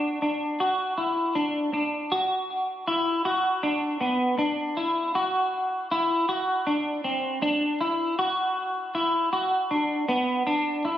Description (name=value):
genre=dream pop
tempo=79 BPM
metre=4/4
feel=straight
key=unclear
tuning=A4 = 445 Hz
part: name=semi-hollow electric guitar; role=solo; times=0.0-11.0 s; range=B3 to F#4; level=-23 LUFS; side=equal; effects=analog chorus, ping-pong delay
room=moderate plate reverb, RT60 2.4 s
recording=recorded on a phone in the room, studio reverb, compression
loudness=-23 LUFS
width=side -11 dB against mid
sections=0.0-2.1 A section; 2.1-11.0 B section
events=none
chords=none